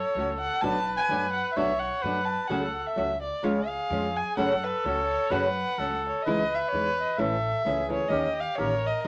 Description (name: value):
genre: mexican folk, mariachi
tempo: 128 BPM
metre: 2/4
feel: straight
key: F# minor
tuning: A4 = 444 Hz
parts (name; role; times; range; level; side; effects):
- dark violin; melody; 0.0-9.1 s; B4 to A5; -31 LUFS; equal; none
- clear trumpet; second line; 0.0-9.1 s; G4 to C#5; -33 LUFS; equal; none
- upright bass; bass; 0.1-9.1 s; A1 to F#2; -39 LUFS; equal; none
- flamenco guitar; accompaniment; 0.2-9.1 s; F#2 to G4; -31 LUFS; equal; none
room: moderate club reverb, RT60 0.5 s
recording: none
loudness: -27 LUFS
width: mono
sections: 0.0-6.3 A section; 6.3-9.1 B section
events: none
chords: 0.0 F#m; 0.6 Bm7; 2.5 F#m/C#; 3.5 C#; 4.4 F#m; 6.3 C#madd9; 7.2 A; 8.1 D#7